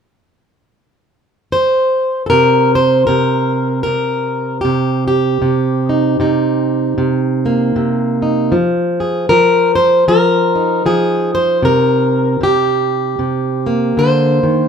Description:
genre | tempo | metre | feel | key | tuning
acoustic country blues, solo or duo | 77 BPM | 4/4 | swing 60% on 8ths | C minor | A4 = 440 Hz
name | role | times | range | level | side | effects
fingerpicked plugged-in steel-string acoustic guitar | solo | 1.5-14.7 s | C3 to C5 | -12 LUFS | equal | none
room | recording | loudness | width
moderate large studio reverb, RT60 0.9 s | band playing live in one room | -12 LUFS | side -7 dB against mid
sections
0.0-2.3 A section; 2.3-14.7 B section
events
none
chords
0.0 N.C.; 2.3 Cm7; 8.5 Fm7; 11.6 Cm7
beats
0.74 1.52 | 2.30 3.08 3.86 4.64 | 5.42 6.20 6.97 7.75 | 8.53 9.30 10.08 10.86 | 11.63 12.41 13.19 13.96

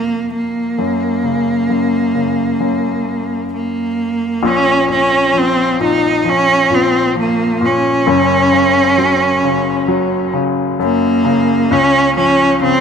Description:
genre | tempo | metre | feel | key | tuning
pop | 66 BPM | 4/4 | straight | Bb minor | A4 = 440 Hz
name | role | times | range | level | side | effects
warm cello | melody | 0.0-12.8 s | Bb3 to Eb4 | -14 LUFS | right 2 dB | none
clear baby grand piano | accompaniment | 0.0-12.8 s | Gb1 to Gb3 | -17 LUFS | left 4 dB | none
room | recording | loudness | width
light reverb | none | -12 LUFS | side -7 dB against mid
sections
0.0-4.4 A section; 4.4-12.8 B section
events
none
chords
0.0 Bbsus2/F; 0.8 Gb; 4.4 Bb5; 8.1 Gb; 11.7 Db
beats
| 0.79 1.70 2.61 3.52 | 4.43 5.33 6.25 7.15 | 8.06 8.97 9.88 10.79 | 11.70 12.61

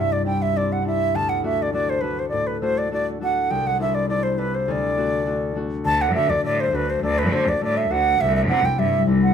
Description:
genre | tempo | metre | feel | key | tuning
celtic folk, Celtic reel | 204 BPM | 4/4 | swing 54% on 8ths | D mixolydian | A4 = 441 Hz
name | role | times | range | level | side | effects
bright baroque flute | melody | 0.0-9.3 s | B4 to A5 | -21 LUFS | right 2 dB | none
concert harp | accompaniment | 0.0-9.3 s | C2 to F#4 | -24 LUFS | left 3 dB | none
clear cello | bass | 5.9-9.3 s | C2 to D3 | -24 LUFS | equal | none
room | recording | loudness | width
wet studio reverb, RT60 0.6 s | minimal, uncompressed stereo recording | -19 LUFS | side -8 dB against mid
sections
0.0-5.9 A section; 5.9-9.3 A section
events
none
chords
0.0 Cadd9; 1.1 D; 3.5 Cadd9; 4.7 D; 8.2 Cadd9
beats
0.26 0.56 0.85 | 1.15 1.44 1.73 2.03 | 2.32 2.62 2.91 3.21 | 3.50 3.79 4.09 4.38 | 4.67 4.97 5.26 5.56 | 5.85 6.14 6.44 6.73 | 7.03 7.32 7.61 7.91 | 8.20 8.49 8.79 9.08

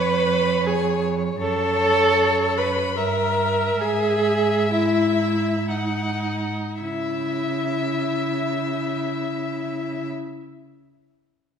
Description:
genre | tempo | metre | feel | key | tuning
classical, slow romantic movement for string quartet | 51-82 BPM | 3/4 | rubato | C# minor | A4 = 441 Hz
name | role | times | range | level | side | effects
warm violin | melody | 0.0-10.1 s | D#5 to B5 | -30 LUFS | left 9 dB | none
warm violin | second line | 0.0-10.1 s | C#5 to F#5 | -28 LUFS | left 3 dB | none
rich viola | accompaniment | 0.0-10.1 s | D#4 to B4 | -22 LUFS | right 1 dB | none
warm cello | bass | 0.0-10.1 s | E#2 to C#3 | -27 LUFS | right 4 dB | none
room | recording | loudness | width
wet scoring stage reverb, RT60 1.5 s | minimal, uncompressed stereo recording | -20 LUFS | side -7 dB against mid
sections
0.0-6.8 A section; 6.8-10.2 B section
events
slowing down 0.3-6.8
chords
0.0 C#7/E#; 1.4 F#m; 3.0 Gm6; 3.8 E/G#; 5.7 G#5; 6.8 C#m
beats
0.67 | 1.41 2.18 2.97 | 3.81 4.70 5.68 | 6.82 7.93 9.07

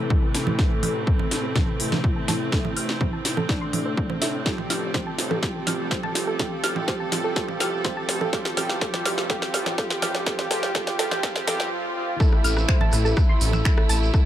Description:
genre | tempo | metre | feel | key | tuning
melodic techno | 124 BPM | 4/4 | straight | A minor | A4 = 440 Hz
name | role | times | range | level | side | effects
fat analog lead | melody | 0.0-14.3 s | D4 to A4 | -31 LUFS | equal | sidechain pumping, ping-pong delay
rich studio string section | sustained chords | 0.0-14.3 s | E3 to A4 | -33 LUFS | right 3 dB | sidechain pumping
analog synth brass | stabs | 0.0-14.3 s | F3 to A4 | -32 LUFS | equal | chorus, sidechain pumping, tape echo
dark detuned saw bass | bass | 0.0-14.1 s | A1 to A2 | -29 LUFS | equal | sidechain pumping, high-pass filter
overtone-sweeping drone | drone | 0.0-11.7 s | A2 to C3 | -37 LUFS | left 2 dB | chorus, built-in reverb, phaser, sidechain pumping
electronic kick drum | drums | 0.1-14.2 s | none | -22 LUFS | equal | overdrive
techno drum kit | drums | 0.1-14.2 s | congas, finger snaps, hi-hat, rim click, snare drum | -27 LUFS | right 1 dB | overdrive
soft round pluck | arpeggios | 0.2-14.2 s | A4 to A6 | -32 LUFS | right 2 dB | chorus, sidechain pumping, tape echo
shekere | percussion | 12.2-14.2 s | none | -33 LUFS | right 4 dB | none
room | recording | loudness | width
light reverb | dark, warm production, high-pass filter | -21 LUFS | side -11 dB against mid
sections
0.0-12.2 A section; 12.2-14.3 B section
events
build-up 0.0-12.2; drum fill 0.0-11.7; filter sweep on analog synth lead 0.0-12.2; filter sweep on analog polysynth 0.0-12.2; filter sweep 0.0-12.2; break 11.7-12.2; drop 12.2-14.3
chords
0.0 Am; 4.5 F/A; 12.2 Am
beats
0.10 | 0.59 1.07 1.56 2.04 | 2.52 3.01 3.49 3.98 | 4.46 4.94 5.43 5.91 | 6.39 6.88 7.36 7.85 | 8.33 8.81 9.30 9.78 | 10.27 10.75 11.23 11.72 | 12.20 12.69 13.17 13.65 | 14.14

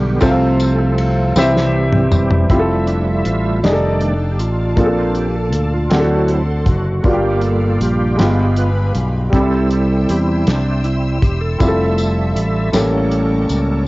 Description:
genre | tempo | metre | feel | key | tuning
slow gospel | 53 BPM (dotted quarters) | 6/8 | straight | F major | A4 = 442 Hz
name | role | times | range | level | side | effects
warm concert grand piano | accompaniment | 0.0-13.9 s | G2 to G5 | -18 LUFS | equal | cassette tape, plate reverb
bright tonewheel organ | sustained chords | 0.0-13.8 s | D3 to E5 | -20 LUFS | right 2 dB | fast rotary speaker, chorus vibrato, cassette tape
fingered electric bass | bass | 0.0-13.8 s | E1 to E2 | -18 LUFS | equal | none
warm soul drum kit | drums | 0.2-13.7 s | hi-hat, kick drum, ride cymbal, snare drum, toms | -18 LUFS | equal | cassette tape
tambourine | percussion | 0.2-2.5, 11.6-13.8 s | none | -30 LUFS | left 5 dB | none
warm symphonic string section | sustained chords | 2.5-13.9 s | C5 to E6 | -33 LUFS | left 2 dB | cassette tape
room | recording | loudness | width
light reverb | home recording on cassette, nothing above 7.6 kHz | -13 LUFS | side -20 dB against mid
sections
0.0-2.5 A section; 2.5-13.9 B section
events
drum fill 1.4-2.5; tonewheel organ solo 2.5-13.9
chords
0.2 F/C; 1.4 C; 2.5 Fmaj7; 3.6 F13; 4.8 Bbmaj7; 5.9 D7; 7.1 Gm7; 8.2 G7b9; 9.3 C; 11.6 Fmaj7; 12.7 A7b9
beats
| 0.22 1.36 | 2.50 3.63 | 4.77 5.91 | 7.05 8.19 | 9.33 10.47 | 11.61 12.74

